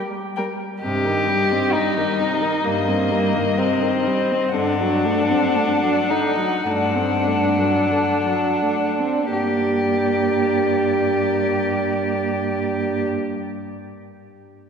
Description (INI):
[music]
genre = classical, slow romantic movement for string quartet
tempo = 41-69 BPM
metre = 4/4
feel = rubato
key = G minor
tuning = A4 = 440 Hz
[part]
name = muted violin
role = melody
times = 0.4-13.1 s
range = D5 to G5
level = -26 LUFS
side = left 4 dB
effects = none
[part]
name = muted violin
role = second line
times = 0.4-13.1 s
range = Bb3 to Bb4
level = -21 LUFS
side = left 1 dB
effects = none
[part]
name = muted viola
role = accompaniment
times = 0.4-13.1 s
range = C3 to C4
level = -25 LUFS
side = right 2 dB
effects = none
[part]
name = muted cello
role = bass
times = 0.8-13.1 s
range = G2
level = -27 LUFS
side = right 2 dB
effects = none
[sound]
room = wet church reverb, RT60 3.2 s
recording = recorded in a church or concert hall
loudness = -18 LUFS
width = side -6 dB against mid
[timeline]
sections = 0.8-9.3 A section; 9.3-14.5 B section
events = slowing down 0.0-9.3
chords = 0.0 N.C.; 0.8 Cm/G; 4.6 D7/G; 9.3 Gm